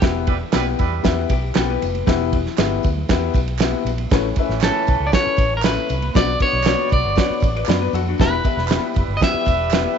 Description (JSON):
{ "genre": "uptempo 1960s-style soul", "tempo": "118 BPM", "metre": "4/4", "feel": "straight", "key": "E dorian", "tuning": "A4 = 442 Hz", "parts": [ { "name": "electric guitar at the edge of break-up", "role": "melody", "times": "0.0, 4.6-10.0 s", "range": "A4 to E5", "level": "-22 LUFS", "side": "left 1 dB", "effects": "none" }, { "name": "clear upright piano", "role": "accompaniment", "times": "0.0-10.0 s", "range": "A2 to B5", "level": "-23 LUFS", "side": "left 13 dB", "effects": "none" }, { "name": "vintage muted fingered electric bass", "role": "bass", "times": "0.0-9.8 s", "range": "E1 to F#2", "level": "-24 LUFS", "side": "equal", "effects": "none" }, { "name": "warm soul drum kit", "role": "drums", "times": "0.0-9.8 s", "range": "kick drum, ride cymbal, snare drum", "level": "-20 LUFS", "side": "right 3 dB", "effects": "none" }, { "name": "congas", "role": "percussion", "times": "0.0-10.0 s", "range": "none", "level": "-37 LUFS", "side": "right 12 dB", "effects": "none" }, { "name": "tambourine and handclaps", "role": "percussion", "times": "0.0-9.8 s", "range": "none", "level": "-36 LUFS", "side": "right 14 dB", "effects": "none" }, { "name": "clear horn section", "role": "second line", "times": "0.3-10.0 s", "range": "E3 to D5", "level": "-30 LUFS", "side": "right 12 dB", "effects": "none" }, { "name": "vintage hollow-body jazz guitar", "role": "riff", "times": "1.3-2.4, 7.6-8.3 s", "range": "D4 to D5", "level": "-29 LUFS", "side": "left 15 dB", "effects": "none" } ], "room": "light reverb, studio reverb", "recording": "1960s-style stereo with parts hard left and right, nothing above 7.7 kHz", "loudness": "-16 LUFS", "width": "side -7 dB against mid", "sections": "0.0-4.1 A section; 4.1-10.0 B section", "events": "upright piano fill 7.4-8.2", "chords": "0.0 Em; 4.1 Aadd9; 6.2 Bm; 8.2 Em", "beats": "| 0.03 0.54 1.05 1.56 | 2.07 2.58 3.09 3.60 | 4.11 4.62 5.13 5.64 | 6.15 6.66 7.17 7.68 | 8.20 8.71 9.22 9.73" }